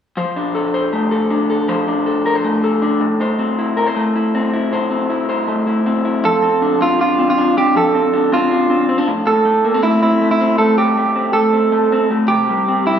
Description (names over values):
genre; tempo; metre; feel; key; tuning
indie pop; 158 BPM; 4/4; straight; F major; A4 = 440 Hz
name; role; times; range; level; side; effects
electric guitar through a small old amp; arpeggios; 0.2-13.0 s; A2 to C5; -16 LUFS; left 2 dB; none
electric guitar through a small old amp; melody; 6.3-13.0 s; E4 to A4; -14 LUFS; right 3 dB; none
room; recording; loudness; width
wet recital hall reverb, RT60 1.4 s; recorded in a church or concert hall; -14 LUFS; side -8 dB against mid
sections
0.2-6.2 A section; 6.2-13.0 B section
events
none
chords
0.2 F6; 3.0 Am; 6.2 F6; 9.1 Am; 12.3 C5